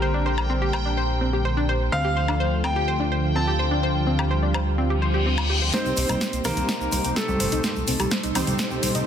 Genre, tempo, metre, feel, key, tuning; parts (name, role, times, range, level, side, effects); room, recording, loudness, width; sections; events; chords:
progressive house; 126 BPM; 4/4; straight; C dorian; A4 = 439 Hz
bright concert grand piano; melody; 0.0-9.1 s; A3 to A5; -29 LUFS; equal; sidechain pumping, dub echo
lush unison pad; sustained chords; 0.0-9.1 s; Bb2 to G4; -29 LUFS; right 1 dB; chorus, sidechain pumping
analog pluck; arpeggios; 0.0-9.0 s; C4 to C5; -28 LUFS; left 1 dB; chorus, sidechain pumping, dub echo
fat analog bass; bass; 0.0-9.0 s; G1 to D2; -25 LUFS; equal; sidechain pumping
backwards swelling texture; texture; 0.0-9.1 s; G5 to C6; -36 LUFS; left 1 dB; built-in reverb, sidechain pumping
house drum kit; drums; 0.4-9.0 s; hi-hat, snare drum, woodblock; -28 LUFS; left 1 dB; studio reverb
reverse cymbal and riser; sound effects; 5.0-9.1 s; -31 LUFS; left 3 dB
supersaw stab; stabs; 5.7-9.1 s; Bb3 to C5; -29 LUFS; right 2 dB; sidechain pumping, dub echo
electronic kick drum; drums; 5.7-8.7 s; -37 LUFS; equal
egg shaker; percussion; 5.7-9.0 s; -36 LUFS; right 5 dB
electronic congas and toms; percussion; 5.7-8.9 s; -32 LUFS; equal; overdrive, sidechain pumping on perc, studio reverb, sidechain pumping on toms
moderate concert hall reverb, RT60 2.0 s; dense, heavily limited modern master; -20 LUFS; side -8 dB against mid
0.0-5.7 A section; 5.7-9.1 B section
reverse cymbal 5.0-5.7; build-up 5.7-9.1; drum fill 5.7-9.1; filter sweep on analog synth pad 5.7-9.1
0.0 Gm/Bb; 1.9 Dm; 5.7 Cm7